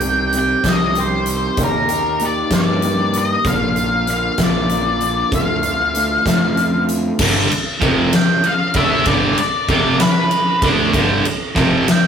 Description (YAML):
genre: quiet-loud alternative rock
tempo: 64 BPM (dotted quarters)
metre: 6/8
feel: straight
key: unclear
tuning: A4 = 439 Hz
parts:
  - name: octave-fuzz lead guitar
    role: melody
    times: 0.0-12.1 s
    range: Bb4 to G5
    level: -18 LUFS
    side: left 1 dB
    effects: distortion
  - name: electric guitar through a small old amp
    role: arpeggios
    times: 0.0-7.2 s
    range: Bb2 to G4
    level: -22 LUFS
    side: right 1 dB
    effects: none
  - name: fuzz fingered electric bass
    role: bass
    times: 0.0-11.9 s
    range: F1 to G2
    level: -24 LUFS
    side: right 1 dB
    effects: overdrive
  - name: huge arena drum kit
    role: drums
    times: 0.0-12.0 s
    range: crash cymbal, hi-hat, kick drum, ride cymbal, snare drum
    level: -18 LUFS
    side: left 1 dB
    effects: none
  - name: distorted electric guitar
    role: riff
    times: 7.2-11.9 s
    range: F2 to D4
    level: -17 LUFS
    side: right 1 dB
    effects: distortion
room: light reverb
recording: rough rehearsal-room recording, warm saturation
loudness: -14 LUFS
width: side -7 dB against mid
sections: 0.0-7.2 A section; 7.2-12.1 B section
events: none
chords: 0.0 Cm; 1.6 Eb; 3.5 Bb; 5.3 Dm; 7.2 G5